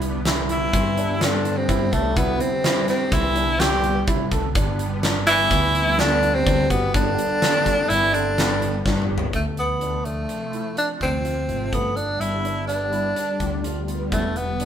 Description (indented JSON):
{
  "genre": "progressive instrumental, band music in an uneven meter",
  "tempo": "126 BPM",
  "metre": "5/4",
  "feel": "straight",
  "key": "unclear",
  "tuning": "A4 = 440 Hz",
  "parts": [
    { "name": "analog string pad", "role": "accompaniment", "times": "0.0-14.7 s", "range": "C3 to B4", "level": "-29 LUFS", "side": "equal", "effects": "ensemble chorus" },
    { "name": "dark concert grand piano", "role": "arpeggios", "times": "0.0-14.7 s", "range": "A3 to A4", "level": "-31 LUFS", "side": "right 4 dB", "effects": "none" },
    { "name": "picked electric bass", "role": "bass", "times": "0.0-14.7 s", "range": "E1 to C3", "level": "-27 LUFS", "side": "left 1 dB", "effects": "none" },
    { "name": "huge arena drum kit", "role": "drums", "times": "0.0-14.7 s", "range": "hi-hat, kick drum, snare drum, toms", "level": "-25 LUFS", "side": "equal", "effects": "none" },
    { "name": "clear tenor saxophone", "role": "melody", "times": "0.5-14.7 s", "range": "A3 to G4", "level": "-22 LUFS", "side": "right 1 dB", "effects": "none" },
    { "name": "mellow trombone", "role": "second line", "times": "0.5-8.9 s", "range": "A2 to G3", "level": "-30 LUFS", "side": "left 5 dB", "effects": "none" }
  ],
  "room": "moderate studio reverb, RT60 0.9 s",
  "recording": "band playing live in one room",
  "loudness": "-19 LUFS",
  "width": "side -9 dB against mid",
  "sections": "0.0-9.3 A section; 9.3-14.7 B section",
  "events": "drum fill 8.9-9.3",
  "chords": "0.0 Cmaj7; 4.6 G; 9.3 Dm; 11.7 Gadd9; 14.1 Em7",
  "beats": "0.26 0.73 1.21 1.69 | 2.17 2.65 3.12 3.60 4.08 | 4.56 5.04 5.51 5.99 6.47 | 6.95 7.42 7.90 8.38 8.86 | 9.34 9.81 10.29 10.77 11.25 | 11.73 12.21 12.69 13.17 13.65 | 14.13 14.61"
}